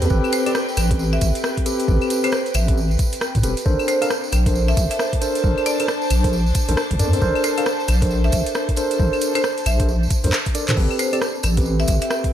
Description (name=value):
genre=UK garage, two-step garage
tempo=135 BPM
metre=4/4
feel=swing 61% on 16ths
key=unclear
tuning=A4 = 441 Hz
part: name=mellow tine electric piano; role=stabs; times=0.0-12.3 s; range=C4 to F5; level=-23 LUFS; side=equal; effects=fast stereo tremolo, diffuse ambient delay
part: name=deep soft wobble bass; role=bass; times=0.0-12.0 s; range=E1 to Bb2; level=-19 LUFS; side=equal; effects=chorus
part: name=garage drum kit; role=drums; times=0.0-12.3 s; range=claves, crash cymbal, handclaps, hi-hat, rim click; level=-26 LUFS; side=equal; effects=overdrive, small room ambience
part: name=tambourine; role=percussion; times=0.0-12.2 s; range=none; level=-31 LUFS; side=right 2 dB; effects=none
part: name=airy breathy pad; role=texture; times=0.0-12.3 s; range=C4 to A5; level=-29 LUFS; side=equal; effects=chorus, sidechain pumping
part: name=electronic kick drum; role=drums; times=0.1-12.3 s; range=none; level=-21 LUFS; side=equal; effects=overdrive, small room ambience
part: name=marimba with hard mallets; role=melody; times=0.3-12.2 s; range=C5 to E5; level=-28 LUFS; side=equal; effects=diffuse ambient delay
room=moderate plate reverb, RT60 1.2 s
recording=dreamy mix soaked in reverb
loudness=-17 LUFS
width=side -10 dB against mid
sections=0.0-12.3 A section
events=drum fill 10.3-10.8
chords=0.0 Am9; 3.7 Bbmaj9; 10.8 Am9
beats=| 0.10 0.55 0.99 1.44 | 1.88 2.33 2.77 3.22 | 3.66 4.11 4.55 4.99 | 5.44 5.88 6.33 6.77 | 7.22 7.66 8.11 8.55 | 8.99 9.44 9.88 10.33 | 10.77 11.22 11.66 12.11